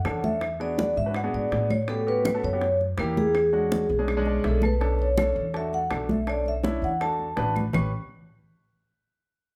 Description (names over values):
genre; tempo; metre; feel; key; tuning
Afro-Cuban jazz; 164 BPM; 4/4; straight; A major; A4 = 440 Hz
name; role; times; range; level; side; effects
vibraphone with medium mallets; melody; 0.0-7.9 s; G#4 to C#6; -29 LUFS; equal; none
upright bass; bass; 0.0-7.9 s; A1 to A2; -31 LUFS; equal; none
warm grand piano; accompaniment; 0.1-7.9 s; G#3 to A5; -33 LUFS; equal; none
bongos; percussion; 0.1-7.8 s; none; -39 LUFS; equal; none
claves; percussion; 0.1-7.8 s; none; -41 LUFS; equal; none
congas; percussion; 0.1-7.8 s; none; -33 LUFS; equal; none
room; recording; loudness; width
moderate large studio reverb, RT60 1.1 s; band playing live in one room; -25 LUFS; mono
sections
0.0-4.8 A section; 4.8-7.7 B section; 7.7-9.2 C section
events
grand piano fill 4.1-4.8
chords
0.4 E9; 1.9 A13; 2.6 F#7b9; 3.3 E13; 4.8 Bm9; 5.5 E7sus4; 6.3 Bm9; 7.0 E7sus4; 7.7 A9